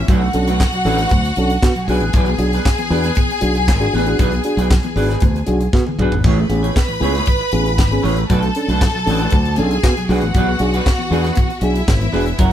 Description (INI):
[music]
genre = disco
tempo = 117 BPM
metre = 4/4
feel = straight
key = unclear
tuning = A4 = 440 Hz
[part]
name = clear studio string section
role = second line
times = 0.0-12.5 s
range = E4 to B5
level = -22 LUFS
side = left 1 dB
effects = none
[part]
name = semi-hollow electric guitar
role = accompaniment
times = 0.0-12.5 s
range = F#3 to C#5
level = -24 LUFS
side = right 2 dB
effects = none
[part]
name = mellow reed electric piano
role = accompaniment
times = 0.1-12.5 s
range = A2 to A4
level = -22 LUFS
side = equal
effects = fast tremolo
[part]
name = modern bright fingered electric bass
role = bass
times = 0.1-12.5 s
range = E1 to B2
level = -18 LUFS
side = equal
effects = none
[part]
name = tight funk drum kit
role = drums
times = 0.1-12.5 s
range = handclaps, hi-hat, kick drum, snare drum, splash cymbal, toms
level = -17 LUFS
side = equal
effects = none
[sound]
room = light reverb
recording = band playing live in one room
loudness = -14 LUFS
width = side -10 dB against mid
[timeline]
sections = 0.0-12.5 A section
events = drum fill 5.7-6.2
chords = 0.1 Bm7; 1.9 E7; 6.2 Amaj7; 8.3 Bm7; 10.1 E7